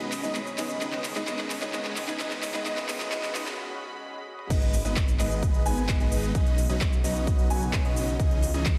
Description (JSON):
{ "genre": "EDM, festival progressive house", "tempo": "130 BPM", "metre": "4/4", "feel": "straight", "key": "B major", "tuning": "A4 = 442 Hz", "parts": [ { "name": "felt-muted upright piano", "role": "accompaniment", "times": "0.0-3.6 s", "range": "D#3 to G#4", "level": "-40 LUFS", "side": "equal", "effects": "sidechain pumping, delay" }, { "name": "lush unison pad", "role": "sustained chords", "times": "0.0-8.8 s", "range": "C#3 to B5", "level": "-39 LUFS", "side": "equal", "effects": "chorus, sidechain pumping" }, { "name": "dark concert grand piano", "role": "arpeggios", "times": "0.0-8.7 s", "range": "D#5 to G#5", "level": "-38 LUFS", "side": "equal", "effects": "sidechain pumping, delay" }, { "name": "big supersaw lead", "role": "riff", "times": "0.0-8.7 s", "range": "E3 to G#5", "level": "-37 LUFS", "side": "equal", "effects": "phaser, sidechain pumping, delay" }, { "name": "detuned saw bass", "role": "bass", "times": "0.0-8.8 s", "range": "G#1 to C#2", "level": "-34 LUFS", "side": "equal", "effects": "chorus, sidechain pumping" }, { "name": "big-room dance drum kit", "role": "drums", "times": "0.0-8.8 s", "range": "crash cymbal, handclaps, hi-hat, shaker, toms", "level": "-36 LUFS", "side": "equal", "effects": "high-pass filter on snare, high-pass filter on hats, high-pass filter on perc, high-pass filter on toms, high-pass filter on cymbals, high-pass filter on room" }, { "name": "riser and swell", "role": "sound effects", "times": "0.5-4.5 s", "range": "none", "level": "-47 LUFS", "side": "equal", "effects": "none" }, { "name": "electronic kick drum", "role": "drums", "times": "4.5-8.7 s", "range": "none", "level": "-27 LUFS", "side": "equal", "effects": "none" } ], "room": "moderate lush hall reverb, RT60 2.3 s", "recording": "dreamy mix soaked in reverb, high-pass filter", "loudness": "-27 LUFS", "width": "mono", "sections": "0.0-4.5 A section; 4.5-8.8 B section", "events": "build-up 0.0-4.5; drum fill 0.0-3.6, 4.0-4.5; filter sweep on grand piano 0.0-4.5; break 3.6-4.5; swell 3.6-4.5; drop 4.5-8.8", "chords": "0.0 Badd9; 0.8 C#sus2; 2.7 Badd9; 4.5 G#m; 6.3 Badd9; 8.2 C#madd9" }